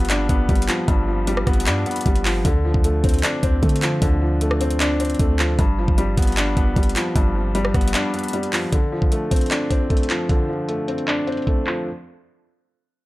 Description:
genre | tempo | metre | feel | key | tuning
hip hop, trap | 153 BPM | 4/4 | half-time | D dorian | A4 = 439 Hz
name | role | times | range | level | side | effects
felt-muted upright piano | accompaniment | 0.0-11.9 s | G2 to D4 | -22 LUFS | left 1 dB | none
clean 808-style bass | bass | 0.0-7.9 s | G1 to D3 | -22 LUFS | equal | none
trap drum kit | drums | 0.0-11.8 s | handclaps, hi-hat, kick drum, rim click | -20 LUFS | equal | none
room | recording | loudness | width
little or no reverb | dry, gritty hardware recording, low-pass filter | -17 LUFS | side -18 dB against mid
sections
0.0-8.7 A section; 8.7-11.9 B section; 11.9-13.1 C section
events
break 7.9-8.7; filter sweep 8.7-11.9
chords
0.0 G7; 2.5 Dm7; 5.6 G7; 8.7 Dm7; 11.9 N.C.

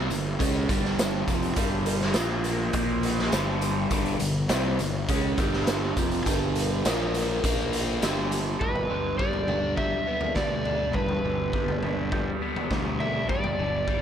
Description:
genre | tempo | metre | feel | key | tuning
psychedelic rock | 102 BPM | 4/4 | straight | unclear | A4 = 438 Hz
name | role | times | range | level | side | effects
overdriven electric guitar | riff | 0.0-14.0 s | F2 to D4 | -28 LUFS | right 1 dB | phaser
fuzz fingered electric bass | bass | 0.0-14.0 s | F1 to D2 | -31 LUFS | equal | overdrive
raw garage drum kit | drums | 0.1-14.0 s | hi-hat, kick drum, snare drum, toms | -28 LUFS | equal | none
tambourine | percussion | 0.1-8.5 s | none | -41 LUFS | left 10 dB | none
overdriven slide guitar | melody | 8.6-14.0 s | B4 to E5 | -29 LUFS | equal | tape echo
room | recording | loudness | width
light reverb | none | -24 LUFS | side -9 dB against mid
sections
0.0-8.6 A section; 8.6-14.0 B section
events
none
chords
0.0 G5; 2.2 Bb5; 3.3 G5; 6.8 Bb5; 8.0 G5; 8.6 G

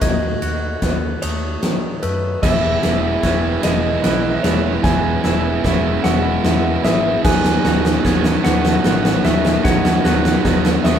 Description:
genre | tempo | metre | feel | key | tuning
post-rock | 50 BPM (dotted quarters) | 6/8 | straight | E major | A4 = 440 Hz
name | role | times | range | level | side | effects
clean lap steel guitar | melody | 0.0-11.0 s | B4 to G#5 | -24 LUFS | left 1 dB | none
ethereal airy pad | sustained chords | 0.0-11.0 s | D#3 to C#5 | -30 LUFS | left 1 dB | none
glockenspiel with rubber mallets | arpeggios | 0.0-11.0 s | C#6 to G#6 | -32 LUFS | right 4 dB | none
twangy electric guitar | arpeggios | 0.0-11.0 s | E2 to F#4 | -32 LUFS | left 4 dB | none
hollow-body short-scale fingered electric bass | bass | 0.0-11.0 s | E1 to D#3 | -24 LUFS | equal | none
huge arena drum kit | drums | 0.0-11.0 s | crash cymbal, kick drum, ride cymbal, snare drum | -18 LUFS | left 1 dB | none
thick fuzz guitar | riff | 2.4-11.0 s | D#3 to E4 | -20 LUFS | right 4 dB | distortion
room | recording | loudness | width
moderate stone room reverb, RT60 1.4 s | band playing live in one room | -14 LUFS | side -8 dB against mid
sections
0.0-11.0 A section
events
build-up 0.0-11.0; drum fill 0.0-11.0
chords
0.0 B7; 2.4 E6; 7.2 B7

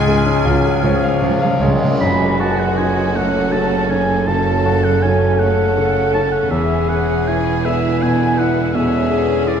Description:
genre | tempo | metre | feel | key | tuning
classical, romantic movement for piano and orchestra | 53 BPM (dotted quarters) | 12/8 | rubato | F# minor | A4 = 440 Hz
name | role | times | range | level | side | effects
clear concert grand piano | melody | 0.0-9.6 s | C#2 to E#5 | -19 LUFS | left 2 dB | none
rich studio violin section | melody | 0.0-9.6 s | A4 to G#5 | -30 LUFS | left 3 dB | none
dark clarinet | second line | 0.0-9.5 s | F#4 to B4 | -30 LUFS | left 2 dB | none
rich symphonic violin section | second line | 0.0-9.6 s | F#4 to G#5 | -30 LUFS | left 2 dB | none
small flute group | second line | 0.0-9.6 s | D5 to E#6 | -26 LUFS | equal | none
warm oboe | second line | 0.0-9.6 s | G#4 to B5 | -25 LUFS | right 1 dB | none
clear symphonic viola section | accompaniment | 0.0-9.6 s | C#4 to G#4 | -28 LUFS | right 4 dB | none
warm bassoon | accompaniment | 0.0-9.6 s | C#3 to G#3 | -24 LUFS | right 3 dB | none
mellow French horn section | sustained chords | 0.0-9.6 s | G#3 to A4 | -22 LUFS | left 2 dB | none
timpani | percussion | 0.0-3.1 s | F#2 to C#3 | -21 LUFS | right 1 dB | none
clear studio double bass section | bass | 0.1-9.6 s | E1 to C#2 | -25 LUFS | right 6 dB | none
mellow tuba | bass | 0.1-1.8 s | C#2 | -26 LUFS | right 3 dB | none
rich symphonic cello section | bass | 0.1-9.6 s | E2 to C#3 | -24 LUFS | right 4 dB | none
tam-tam | percussion | 2.0-5.0 s | none | -31 LUFS | left 1 dB | none
room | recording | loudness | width
wet scoring stage reverb, RT60 1.6 s | none | -14 LUFS | side -7 dB against mid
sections
0.0-2.0 A section; 2.0-9.6 B section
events
timpani fill 0.0-2.0; band accent 2.0-2.8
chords
0.0 C#; 2.0 F#m; 6.5 E

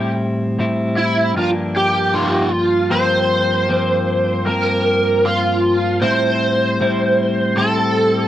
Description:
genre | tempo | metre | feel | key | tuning
indie pop | 77 BPM | 4/4 | straight | G dorian | A4 = 440 Hz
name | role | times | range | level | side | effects
clean electric guitar | accompaniment | 0.0-8.3 s | G2 to E4 | -19 LUFS | left 1 dB | lush chorus, warbly pitch drift, cassette tape
overdriven slide guitar | melody | 1.0-8.3 s | E4 to C5 | -16 LUFS | right 1 dB | ensemble chorus
room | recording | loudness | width
moderate studio reverb, RT60 0.5 s | home recording on cassette | -15 LUFS | side -12 dB against mid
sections
0.0-2.9 A section; 2.9-8.3 B section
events
none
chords
0.0 Am7; 1.4 Gm7; 6.0 Am7

